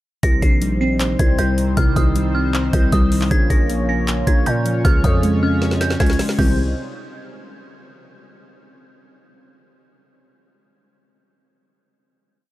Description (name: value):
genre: hip hop, trap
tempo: 156 BPM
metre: 4/4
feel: half-time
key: C phrygian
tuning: A4 = 441 Hz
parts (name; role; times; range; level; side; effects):
- dark detuned synth bell; melody; 0.2-6.6 s; Eb6 to C7; -27 LUFS; right 1 dB; chorus
- glassy digital keys; accompaniment; 0.2-6.6 s; C3 to Db5; -22 LUFS; equal; chorus
- sweeping resonant pad; sustained chords; 0.2-6.6 s; G3 to Db5; -28 LUFS; equal; chorus
- growling 808-style bass; bass; 0.2-6.7 s; Bb1 to Bb2; -20 LUFS; equal; none
- trap drum kit; drums; 0.2-6.5 s; crash cymbal, handclaps, hi-hat, kick drum, snare drum; -18 LUFS; equal; none
room: digital ambience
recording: dark, warm production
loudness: -15 LUFS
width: side -16 dB against mid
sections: 0.2-6.4 hook; 6.4-7.9 final chord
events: drum fill 5.6-6.4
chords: 0.2 Cm; 3.3 Bbm; 4.8 Db; 6.4 Cm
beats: | 0.23 0.62 1.00 1.39 | 1.77 2.16 2.54 2.92 | 3.31 3.69 4.08 4.46 | 4.85 5.23 5.62 6.00 | 6.39